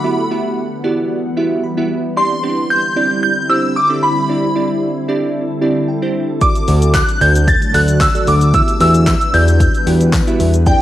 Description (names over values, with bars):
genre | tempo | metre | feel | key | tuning
dance-pop | 113 BPM | 4/4 | straight | E minor | A4 = 442 Hz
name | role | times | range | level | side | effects
shimmering bell with halo | melody | 0.0-10.8 s | G5 to A6 | -16 LUFS | equal | ensemble chorus, cassette tape
glassy digital keys | accompaniment | 0.0-10.8 s | B3 to B5 | -19 LUFS | right 2 dB | chorus, cassette tape
glassy FM pad | sustained chords | 0.0-10.8 s | D3 to F#5 | -22 LUFS | left 1 dB | ensemble chorus, built-in reverb, sidechain pumping, cassette tape
deep house drum kit | drums | 6.4-10.8 s | handclaps, hi-hat, kick drum, shaker | -16 LUFS | equal | none
fat analog bass | bass | 6.7-10.7 s | D2 to E2 | -12 LUFS | equal | sidechain pumping
tambourine | percussion | 6.9-10.3 s | none | -33 LUFS | left 8 dB | none
room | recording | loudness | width
light reverb | home recording on cassette | -12 LUFS | side -13 dB against mid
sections
0.0-10.8 A section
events
synth keys fill 1.4-2.2, 5.6-6.4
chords
0.0 Emadd9; 2.2 Cadd9; 6.4 D; 8.5 Emadd9